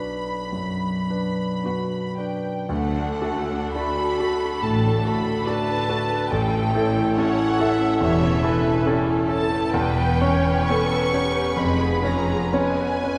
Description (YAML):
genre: classical, romantic movement for piano and orchestra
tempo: 52-72 BPM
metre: 4/4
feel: rubato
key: D major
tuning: A4 = 441 Hz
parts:
  - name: clear concert grand piano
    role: melody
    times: 0.0-13.2 s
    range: A1 to C#5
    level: -25 LUFS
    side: equal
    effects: none
  - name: warm studio violin section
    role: melody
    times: 0.0-13.2 s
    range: E5 to C#6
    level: -31 LUFS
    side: equal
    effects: none
  - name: rich studio violin section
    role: second line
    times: 0.0-13.2 s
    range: G3 to F#5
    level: -33 LUFS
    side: equal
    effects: none
  - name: warm studio viola section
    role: accompaniment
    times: 0.0-13.2 s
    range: B3 to E5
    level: -32 LUFS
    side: equal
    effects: none
  - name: rich studio cello section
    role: bass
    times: 0.5-12.4 s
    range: D2 to A2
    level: -33 LUFS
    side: equal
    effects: none
  - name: warm studio double bass section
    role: bass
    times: 2.7-12.4 s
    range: E1 to D2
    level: -30 LUFS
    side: equal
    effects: none
room: wet scoring stage reverb, RT60 1.9 s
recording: none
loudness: -22 LUFS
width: mono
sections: 0.0-2.7 A section; 2.7-13.2 B section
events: none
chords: 0.0 Bm; 2.7 D; 6.3 A7; 9.7 C#m7b5/E; 11.6 C#7/E#